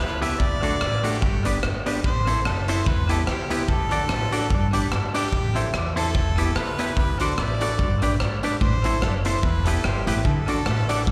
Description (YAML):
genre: ska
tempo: 146 BPM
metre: 4/4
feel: swing 56% on 8ths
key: unclear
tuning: A4 = 439 Hz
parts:
  - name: clear harmonica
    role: melody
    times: 0.0-11.1 s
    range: G4 to E5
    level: -32 LUFS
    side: equal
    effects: dub echo, plate reverb, slapback echo
  - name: dark upright piano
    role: stabs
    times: 0.0-11.0 s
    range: D4 to E5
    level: -34 LUFS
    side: equal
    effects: dub echo, plate reverb, slapback echo
  - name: upright bass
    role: bass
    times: 0.0-11.1 s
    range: E1 to E2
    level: -28 LUFS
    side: equal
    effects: none
  - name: semi-hollow electric guitar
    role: accompaniment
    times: 0.2-11.0 s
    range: A3 to D5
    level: -31 LUFS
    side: equal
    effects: dub echo, plate reverb, slapback echo
  - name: raw garage drum kit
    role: drums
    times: 0.2-11.1 s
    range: hi-hat, kick drum, rim click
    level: -28 LUFS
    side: equal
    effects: dub echo
  - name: tambourine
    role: percussion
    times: 2.3-11.0 s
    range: none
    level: -47 LUFS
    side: equal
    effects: none
  - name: semi-hollow electric guitar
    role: riff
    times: 8.6-11.1 s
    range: E2 to D3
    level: -30 LUFS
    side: equal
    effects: none
room: light reverb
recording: live gig heard through the venue's PA, recital hall reverb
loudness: -23 LUFS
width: mono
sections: 0.0-11.1 A section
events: none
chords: 0.4 D; 1.2 G; 2.0 Am; 2.9 Em; 3.7 D; 4.5 G; 5.3 Am; 6.1 Em; 7.0 D; 7.8 G; 8.6 Am; 9.4 Em; 10.2 D